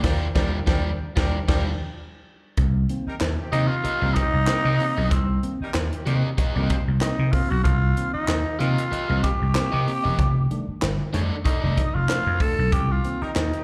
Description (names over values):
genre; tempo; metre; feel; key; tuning
funk; 95 BPM; 4/4; swing 56% on 16ths; C dorian; A4 = 442 Hz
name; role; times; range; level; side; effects
clear horn section; second line; 0.0-6.8, 13.2-13.6 s; Eb3 to C5; -39 LUFS; equal; none
crunchy overdriven guitar; accompaniment; 0.0-11.8 s; Eb4 to Eb5; -35 LUFS; equal; slapback echo
vintage slap bass; bass; 0.0-13.5 s; E1 to C3; -26 LUFS; equal; none
crisp fusion drum kit; drums; 0.0-13.6 s; crash cymbal, handclaps, hi-hat, kick drum, snare drum; -28 LUFS; equal; none
tine electric piano; stabs; 0.4-13.2 s; C3 to D4; -34 LUFS; equal; slapback echo
growling tenor saxophone; melody; 3.5-13.6 s; C4 to A4; -28 LUFS; equal; slapback echo
room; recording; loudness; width
light reverb; live gig heard through the venue's PA, club reverb; -23 LUFS; mono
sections
0.0-2.6 A section; 2.6-13.6 B section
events
band accent 0.0-2.6; tenor saxophone solo 2.6-13.6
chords
0.0 Ebmaj9; 2.6 Cm7; 10.2 F13; 12.7 Cm7